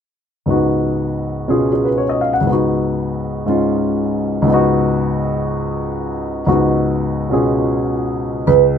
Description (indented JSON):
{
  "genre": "jazz",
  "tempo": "120 BPM",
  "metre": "4/4",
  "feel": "swing 66% on 8ths",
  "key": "Db mixolydian",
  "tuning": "A4 = 440 Hz",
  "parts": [
    { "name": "warm concert grand piano", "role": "accompaniment", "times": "0.5-8.8 s", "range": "Db2 to Gb5", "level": "-15 LUFS", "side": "left 1 dB", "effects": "none" },
    { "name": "vibraphone with soft mallets", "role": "melody", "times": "8.5-8.6 s", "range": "Cb5", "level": "-11 LUFS", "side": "right 13 dB", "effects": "none" }
  ],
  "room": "light reverb",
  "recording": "none",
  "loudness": "-15 LUFS",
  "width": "side -8 dB against mid",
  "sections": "0.5-8.5 A section",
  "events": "none",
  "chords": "0.5 Db9sus4"
}